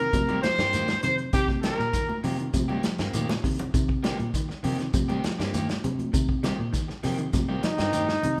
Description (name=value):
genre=afrobeat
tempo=100 BPM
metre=4/4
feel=straight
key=C minor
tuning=A4 = 440 Hz
part: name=breathy trumpet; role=melody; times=0.0-2.2, 7.6-8.4 s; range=Eb4 to C5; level=-30 LUFS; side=equal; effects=none
part: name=edgy alto saxophone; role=second line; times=0.0-2.2, 7.6-8.4 s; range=Eb4 to C5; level=-33 LUFS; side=equal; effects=none
part: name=semi-hollow electric guitar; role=arpeggios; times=0.0-8.4 s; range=Eb3 to G3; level=-37 LUFS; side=equal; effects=none
part: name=electric guitar at the edge of break-up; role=stabs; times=0.0-8.3 s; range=Eb3 to G4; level=-38 LUFS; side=equal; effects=none
part: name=fingered electric bass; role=bass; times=0.0-8.4 s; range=G2 to C3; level=-32 LUFS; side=equal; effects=none
part: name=warm soul drum kit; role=drums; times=0.1-8.4 s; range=hi-hat, kick drum, snare drum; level=-32 LUFS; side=equal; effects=none
part: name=congas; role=percussion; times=0.1-8.4 s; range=none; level=-36 LUFS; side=equal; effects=none
part: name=shekere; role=percussion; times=0.1-8.4 s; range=none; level=-41 LUFS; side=equal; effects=none
room=wet large studio reverb, RT60 1.2 s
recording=band playing live in one room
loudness=-26 LUFS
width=mono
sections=0.0-8.4 A section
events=drum fill 3.3-3.7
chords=0.0 Cm7